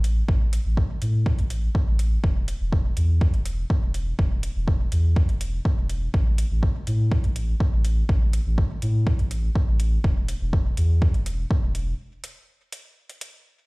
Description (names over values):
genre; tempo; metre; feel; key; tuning
dub techno; 123 BPM; 4/4; straight; unclear; A4 = 440 Hz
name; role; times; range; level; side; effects
soft dub sub bass; bass; 0.0-11.9 s; E1 to A2; -23 LUFS; equal; sidechain pumping
electronic hi-hat; drums; 0.0-13.3 s; none; -41 LUFS; right 1 dB; overdrive, dub echo
electronic kick drum; drums; 0.3-11.6 s; none; -22 LUFS; equal; overdrive
room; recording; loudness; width
digital ambience; played on a big sound system in a bare room, stone room reverb; -20 LUFS; side -25 dB against mid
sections
0.0-13.7 A section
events
break 12.0-13.7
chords
none